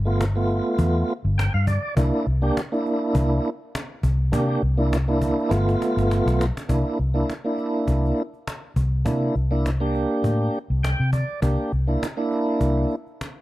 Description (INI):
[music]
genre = straight-eighth soul blues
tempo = 102 BPM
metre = 4/4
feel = swing 55% on 16ths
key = C mixolydian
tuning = A4 = 440 Hz
[part]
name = vintage muted fingered electric bass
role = bass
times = 0.0-12.8 s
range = G1 to C3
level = -21 LUFS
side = equal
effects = none
[part]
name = tonewheel organ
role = accompaniment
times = 0.1-13.0 s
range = A3 to G5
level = -23 LUFS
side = right 1 dB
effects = slow rotary speaker, overdrive
[part]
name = cajon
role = drums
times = 0.2-13.4 s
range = none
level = -31 LUFS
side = equal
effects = none
[sound]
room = small room ambience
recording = dry, close 1970s-style studio recording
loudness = -20 LUFS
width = side -16 dB against mid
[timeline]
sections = 0.0-6.7 A section; 6.7-13.4 B section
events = tonewheel organ fill 1.1-2.0, 10.5-11.4; drum fill 5.5-6.7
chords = 0.0 G7; 2.0 C7; 5.5 G7; 6.7 C7